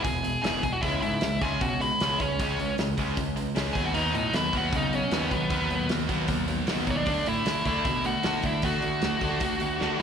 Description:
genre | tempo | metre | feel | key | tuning
punk rock | 154 BPM | 4/4 | straight | unclear | A4 = 444 Hz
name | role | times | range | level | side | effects
nasal lead guitar with a parked wah | melody | 0.0-10.0 s | B3 to G#5 | -28 LUFS | equal | overdrive, slapback echo
distorted electric guitar | riff | 0.0-10.0 s | E2 to D4 | -33 LUFS | right 12 dB | overdrive, slapback echo
raw garage guitar | riff | 0.0-10.0 s | E2 to D4 | -33 LUFS | left 12 dB | overdrive, slapback echo
growling picked electric bass | bass | 0.0-10.0 s | E1 to C#3 | -32 LUFS | equal | overdrive
loose indie drum kit | drums | 0.0-10.0 s | hi-hat, kick drum, snare drum | -32 LUFS | equal | none
thick fuzz guitar | riff | 3.9-10.0 s | B2 to D4 | -33 LUFS | equal | distortion, slapback echo
room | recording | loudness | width
small room ambience | live gig heard through the venue's PA, recital hall reverb | -24 LUFS | side -7 dB against mid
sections
0.0-10.0 A section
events
drum fill 9.8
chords
0.0 E; 0.8 C#m; 3.8 B/D#; 7.1 D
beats
0.04 0.43 | 0.82 1.22 1.61 2.00 | 2.39 2.78 3.17 3.56 | 3.95 4.34 4.73 5.12 | 5.51 5.90 6.29 6.68 | 7.07 7.46 7.85 8.24 | 8.63 9.03 9.42 9.81

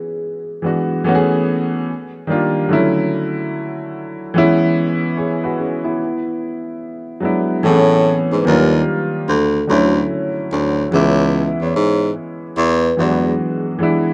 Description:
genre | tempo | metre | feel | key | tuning
hip hop | 73 BPM | 4/4 | swing 64% on 16ths | unclear | A4 = 441 Hz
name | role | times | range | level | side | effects
vibraphone with soft mallets | melody | 0.0-0.5, 7.7-13.6 s | G#4 to E5 | -25 LUFS | equal | low-pass filter
warm upright piano | accompaniment | 0.6-14.1 s | D3 to C#5 | -19 LUFS | equal | low-pass filter
warm baritone saxophone | bass | 7.6-13.3 s | C#2 to A2 | -18 LUFS | equal | none
room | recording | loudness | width
moderate lush hall reverb, RT60 2.3 s | rough home demo mix | -17 LUFS | mono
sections
0.0-7.6 A section; 7.6-14.1 B section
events
none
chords
0.0 E7; 1.1 Amaj9; 1.9 D#maj7; 2.7 Dmaj7; 4.3 C#m7; 6.0 E7; 7.6 Amaj9; 8.5 D#maj7; 9.3 Dmaj7; 10.9 C#m7; 12.6 E7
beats
0.24 | 1.06 1.88 2.70 3.52 | 4.35 5.17 5.99 6.81 | 7.63 8.46 9.28 10.10 | 10.92 11.74 12.57 13.39

